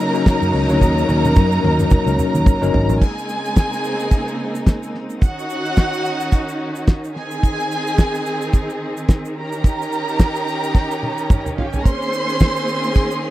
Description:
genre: disco.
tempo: 109 BPM.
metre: 4/4.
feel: swing 56% on 16ths.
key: unclear.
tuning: A4 = 440 Hz.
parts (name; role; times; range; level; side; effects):
dark studio violin section; second line; 0.0-13.3 s; F4 to C6; -23 LUFS; right 2 dB; none.
bell-like tine electric piano; accompaniment; 0.0-3.0 s; Gb3 to Db5; -19 LUFS; left 4 dB; medium stereo tremolo.
rich studio string section; sustained chords; 0.0-13.3 s; Db3 to Ab4; -24 LUFS; equal; none.
egg shaker; percussion; 0.0-13.2 s; none; -41 LUFS; right 14 dB; none.
damped 70s drum kit; drums; 0.3-13.1 s; crash cymbal, hi-hat, kick drum, snare drum, toms; -15 LUFS; equal; none.
fingered electric bass; bass; 0.4-3.0 s; G1 to Gb2; -18 LUFS; equal; none.
room: little or no reverb.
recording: dry, close 1970s-style studio recording.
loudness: -16 LUFS.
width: side -15 dB against mid.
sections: 0.0-3.0 A section; 3.0-13.3 B section.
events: drum fill 0.8-3.0, 10.7-11.9.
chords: 0.0 Ebm7; 3.0 Bbm11; 5.2 Ebm7; 7.2 Ab/Eb; 9.4 Eb7; 11.9 Bbm11.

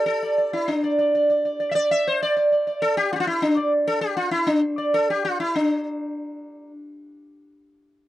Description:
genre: indian classical.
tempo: 199 BPM.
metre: 4/4.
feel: straight.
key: D raga kafi.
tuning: A4 = 440 Hz.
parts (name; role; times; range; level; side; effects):
sitar; solo; 0.0-6.7 s; D4 to E5; -20 LUFS; equal; none.
room: light reverb.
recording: dry, close 1970s-style studio recording.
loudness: -20 LUFS.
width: side -14 dB against mid.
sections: 0.0-5.5 A section; 5.5-7.9 B section.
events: speeding up 0.0-7.9.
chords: none.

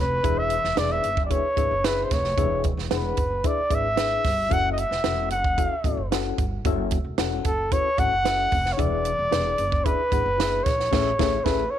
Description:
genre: uptempo 1960s-style soul.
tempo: 112 BPM.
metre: 4/4.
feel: straight.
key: unclear.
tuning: A4 = 440 Hz.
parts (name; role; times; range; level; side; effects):
breathy trumpet; melody; 0.0-11.8 s; A4 to F#5; -24 LUFS; equal; none.
mellow reed electric piano; accompaniment; 0.0-11.6 s; A2 to F#5; -29 LUFS; left 11 dB; fast tremolo.
upright bass; bass; 0.0-11.6 s; E1 to A#1; -30 LUFS; equal; none.
compact cocktail drum kit; drums; 0.2-11.6 s; crash cymbal, hi-hat, kick drum, snare drum; -26 LUFS; right 3 dB; none.
room: light reverb, small room ambience.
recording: 1960s-style stereo.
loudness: -21 LUFS.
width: side -10 dB against mid.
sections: 0.0-11.8 A section.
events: band accent 10.9-11.8.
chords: 0.2 E7; 4.5 F#m7; 8.8 E7; 10.9 Amaj7.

